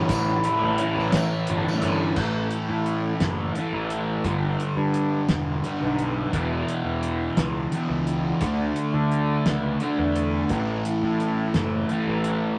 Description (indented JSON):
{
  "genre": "psychedelic rock",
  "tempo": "58 BPM (dotted quarters)",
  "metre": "6/8",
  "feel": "straight",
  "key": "A mixolydian",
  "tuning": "A4 = 440 Hz",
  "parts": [
    { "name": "fuzz guitar", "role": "riff", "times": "0.0-12.6 s", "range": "E2 to E4", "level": "-27 LUFS", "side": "equal", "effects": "distortion, phaser" },
    { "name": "fuzz picked electric bass", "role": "bass", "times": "0.0-12.5 s", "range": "E1 to D3", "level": "-30 LUFS", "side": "equal", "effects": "overdrive" },
    { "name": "tanpura", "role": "drone", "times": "0.0-7.8 s", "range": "A2 to A3", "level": "-32 LUFS", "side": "equal", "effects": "none" },
    { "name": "cloth-damped thuddy drum kit", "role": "drums", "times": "0.1-12.4 s", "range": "crash cymbal, hi-hat, kick drum, snare drum", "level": "-30 LUFS", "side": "equal", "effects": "none" },
    { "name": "tambourine", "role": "percussion", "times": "0.1-1.9 s", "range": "none", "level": "-43 LUFS", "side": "equal", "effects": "none" }
  ],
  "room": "wet studio reverb, RT60 0.8 s",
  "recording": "none",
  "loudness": "-25 LUFS",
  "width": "mono",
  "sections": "0.0-2.2 A section; 2.2-12.6 B section",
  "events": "none",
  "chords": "0.0 A7; 2.2 A5; 4.3 G; 6.3 E5; 8.4 D5; 10.5 A5",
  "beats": "| 0.09 1.13 | 2.17 3.21 | 4.25 5.30 | 6.34 7.38 | 8.42 9.46 | 10.51 11.55"
}